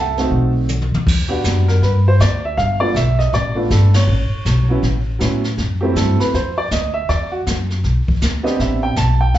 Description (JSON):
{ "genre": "jazz piano trio", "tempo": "159 BPM", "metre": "4/4", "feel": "swing 64% on 8ths", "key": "E minor", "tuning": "A4 = 440 Hz", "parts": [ { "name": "warm upright piano", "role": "melody", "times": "0.0-9.4 s", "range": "F#3 to A5", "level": "-19 LUFS", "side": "right 2 dB", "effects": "slapback echo" }, { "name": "upright bass", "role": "bass", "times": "0.0-9.4 s", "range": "G1 to B2", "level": "-16 LUFS", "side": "equal", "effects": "none" }, { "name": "jazz brush drum kit", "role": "drums", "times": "0.2-9.4 s", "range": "brushed snare drum, crash cymbal, hi-hat, kick drum, ride cymbal, snare drum, toms", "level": "-22 LUFS", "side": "equal", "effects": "none" } ], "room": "light reverb", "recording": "live gig heard through the venue's PA, club reverb, nothing above 7.9 kHz", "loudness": "-14 LUFS", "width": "side -13 dB against mid", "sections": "0.0-1.1 A section; 1.1-9.4 B section", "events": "drum fill 0.7-1.1; band accent 3.9", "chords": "0.3 B7b9; 1.1 Em9; 2.6 G9; 4.1 A69; 5.6 F#m7b5; 6.3 Dm7; 7.1 E7sus2; 8.6 Am11" }